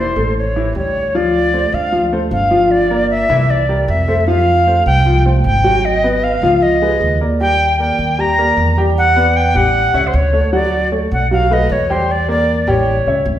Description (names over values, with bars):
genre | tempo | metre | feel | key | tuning
jazz | 154 BPM | 4/4 | straight | unclear | A4 = 440 Hz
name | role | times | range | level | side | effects
bright reedy jazz flute | melody | 0.0-13.3 s | C5 to Bb5 | -16 LUFS | equal | none
clear upright piano | accompaniment | 0.0-13.4 s | E3 to G5 | -17 LUFS | left 1 dB | none
upright bass | bass | 0.0-13.4 s | E1 to F2 | -17 LUFS | right 1 dB | none
room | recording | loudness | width
wet recital hall reverb, RT60 1.4 s | recorded in a church or concert hall | -12 LUFS | side -11 dB against mid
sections
0.0-1.1 A section; 1.1-13.4 B section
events
none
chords
0.4 A7; 1.1 Dm7; 2.7 Gm7; 3.5 C13; 4.3 Fadd9; 5.8 G#m7; 6.6 C#9; 7.4 Ebmaj7; 9.0 Em9; 9.7 A6; 10.5 Dmaj7; 11.3 B5; 12.1 Em7b5; 12.9 A7